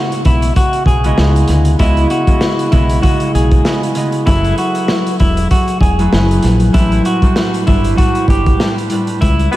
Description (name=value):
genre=hip hop, boom-bap hip-hop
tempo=97 BPM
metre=4/4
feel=swing 58% on 16ths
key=C# minor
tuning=A4 = 440 Hz
part: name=electric guitar at the edge of break-up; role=melody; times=0.0-9.6 s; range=E4 to G#4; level=-19 LUFS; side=equal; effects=lush chorus, high-pass filter, low-pass filter, ping-pong delay
part: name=concert harp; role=accompaniment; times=0.0-9.3 s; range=A2 to D#5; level=-16 LUFS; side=equal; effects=high-pass filter, low-pass filter
part: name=crunchy breakbeat drum kit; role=drums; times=0.1-9.6 s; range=hi-hat, kick drum, snare drum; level=-15 LUFS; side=equal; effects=none
part: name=deep dub fingered electric bass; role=bass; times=0.3-9.5 s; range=E1 to D2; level=-14 LUFS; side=equal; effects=none
part: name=mellow horn section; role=stabs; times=9.5-9.6 s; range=G#3 to B4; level=-15 LUFS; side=left 2 dB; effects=high-pass filter, low-pass filter
room=moderate lush hall reverb, RT60 3.0 s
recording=dreamy mix soaked in reverb, vinyl crackle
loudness=-10 LUFS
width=side -15 dB against mid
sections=0.0-9.6 A section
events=none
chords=0.0 C#m11; 4.3 F#m11; 6.7 Am11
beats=0.56 1.18 | 1.79 2.41 3.03 3.65 | 4.27 4.89 5.51 6.12 | 6.74 7.36 7.98 8.60 | 9.22